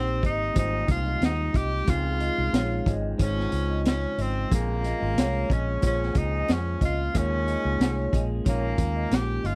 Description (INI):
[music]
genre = indie pop, bedroom pop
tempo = 91 BPM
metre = 4/4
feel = swing 55% on 16ths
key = Ab major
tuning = A4 = 439 Hz
[part]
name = bright tenor saxophone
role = melody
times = 0.0-9.6 s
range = Bb3 to G4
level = -32 LUFS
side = equal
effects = subtle chorus, slapback echo
[part]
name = vibraphone with soft mallets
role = second line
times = 0.0-9.6 s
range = C5 to Eb5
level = -39 LUFS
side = equal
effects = lush chorus, slapback echo
[part]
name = electric guitar through a small old amp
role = accompaniment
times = 0.0-9.6 s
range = Ab2 to Ab4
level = -38 LUFS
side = equal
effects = subtle chorus, vibrato effect
[part]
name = mellow tine electric piano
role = accompaniment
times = 0.0-9.6 s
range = Ab3 to C5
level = -35 LUFS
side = equal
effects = none
[part]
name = vintage muted fingered electric bass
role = bass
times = 0.0-9.6 s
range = G1 to F2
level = -31 LUFS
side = equal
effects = none
[part]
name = raw garage drum kit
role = drums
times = 0.2-9.6 s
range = hi-hat, kick drum, snare drum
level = -28 LUFS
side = equal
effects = none
[sound]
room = little or no reverb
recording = dry, close 1970s-style studio recording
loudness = -26 LUFS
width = mono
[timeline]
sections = 0.0-9.6 A section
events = none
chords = 0.0 Abmaj7; 1.9 Dbmaj7; 4.5 Bbm7; 7.1 Eb7sus4